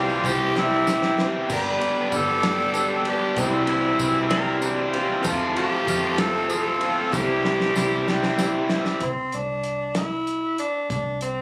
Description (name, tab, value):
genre	folk rock and heartland rock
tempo	64 BPM (dotted quarters)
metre	6/8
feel	straight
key	unclear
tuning	A4 = 437 Hz
part	growling tenor saxophone	melody	0.0-11.4 s	C4 to B4	-27 LUFS	equal	none
part	overdriven reed electric piano	accompaniment	0.0-9.0 s	B3 to G5	-34 LUFS	equal	fast tremolo
part	picked twelve-string acoustic guitar	accompaniment	0.0-9.0 s	G2 to A4	-31 LUFS	equal	none
part	biting overdriven guitar	riff	0.0-9.0 s	F2 to G4	-28 LUFS	equal	none
part	vintage muted fingered electric bass	bass	0.0-11.4 s	G1 to F2	-36 LUFS	equal	none
part	tambourine	percussion	0.1-8.9 s	none	-39 LUFS	equal	none
part	damped 70s drum kit	drums	0.2-11.4 s	crash cymbal, hi-hat, kick drum, ride cymbal, snare drum	-32 LUFS	equal	none
part	pedal steel guitar	second line	4.3-5.4 s	D4 to Bb4	-30 LUFS	equal	none
room	light reverb, small room ambience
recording	recorded on a phone in the room, club reverb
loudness	-23 LUFS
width	mono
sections	0.0-9.0 A section; 9.0-11.4 B section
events	drum fill 0.5-1.5, 7.1-9.0; reed electric piano fill 8.1-9.0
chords	0.0 C; 1.5 G; 3.4 C; 5.3 F; 7.1 C; 9.0 Cadd9